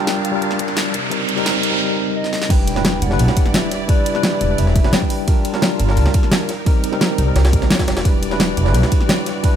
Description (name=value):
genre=liquid drum and bass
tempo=173 BPM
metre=4/4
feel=straight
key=unclear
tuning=A4 = 438 Hz
part: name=hollow clarinet-like synth lead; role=melody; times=0.0-5.6 s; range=D5 to G5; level=-27 LUFS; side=left 1 dB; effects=chorus, digital delay
part: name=tine electric piano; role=accompaniment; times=0.0-9.6 s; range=G3 to B4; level=-21 LUFS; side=equal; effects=medium stereo tremolo, dub echo
part: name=clear studio string section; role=sustained chords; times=0.0-9.6 s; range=C3 to A5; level=-30 LUFS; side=left 1 dB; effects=sidechain pumping
part: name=riser and impact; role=sound effects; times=0.0-3.9 s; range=none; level=-24 LUFS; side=right 1 dB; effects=none
part: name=pop drum kit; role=drums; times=0.1-9.5 s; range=crash cymbal, hi-hat, snare drum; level=-21 LUFS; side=equal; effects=high-pass filter on hats, studio reverb, high-pass filter on snare, high-pass filter on cymbals
part: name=electronic kick drum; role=drums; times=0.6-9.5 s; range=none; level=-16 LUFS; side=equal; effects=high-pass filter on kick, studio reverb
part: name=jungle sampler-style drum kit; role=drums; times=2.5-9.5 s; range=hi-hat, ride cymbal, snare drum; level=-26 LUFS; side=equal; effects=overdrive, high-pass filter on cymbals, studio reverb, high-pass filter on snare, high-pass filter on hats
part: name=upright bass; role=bass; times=3.0-8.8 s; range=E1 to D2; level=-16 LUFS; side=equal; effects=none
room=light reverb, digital ambience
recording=none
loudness=-14 LUFS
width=side -9 dB against mid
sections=0.0-2.5 A section; 2.5-9.6 B section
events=build-up 0.0-2.5; riser 0.0-1.8; drum fill 2.2; drop 2.5-9.6; impact 2.5-3.9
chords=0.0 Gm7; 0.9 Cm7; 2.5 Em7; 5.3 Gm7; 6.5 Cm7; 8.1 Em7